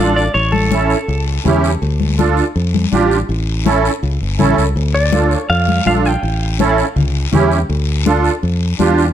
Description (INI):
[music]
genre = latin, cumbia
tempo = 163 BPM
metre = 4/4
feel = straight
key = D harmonic minor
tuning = A4 = 440 Hz
[part]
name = clean electric guitar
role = melody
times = 0.0-1.2, 4.9-6.8 s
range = A4 to G5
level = -19 LUFS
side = equal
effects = spring reverb, plate reverb
[part]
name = musette accordion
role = accompaniment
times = 0.0-9.1 s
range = C#4 to A4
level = -16 LUFS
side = right 4 dB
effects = none
[part]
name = fingered electric bass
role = bass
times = 0.0-9.1 s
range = G1 to F2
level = -16 LUFS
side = left 1 dB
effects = none
[part]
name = guiro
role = percussion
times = 0.2-9.1 s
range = none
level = -29 LUFS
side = left 8 dB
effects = none
[part]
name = congas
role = percussion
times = 0.3-9.0 s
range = none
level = -19 LUFS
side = left 4 dB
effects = none
[sound]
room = light reverb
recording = none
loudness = -13 LUFS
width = side -10 dB against mid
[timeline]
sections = 0.0-9.1 A section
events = none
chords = 0.3 A7; 1.8 Dm; 3.3 A; 4.8 Dm; 6.2 A7; 7.7 Dm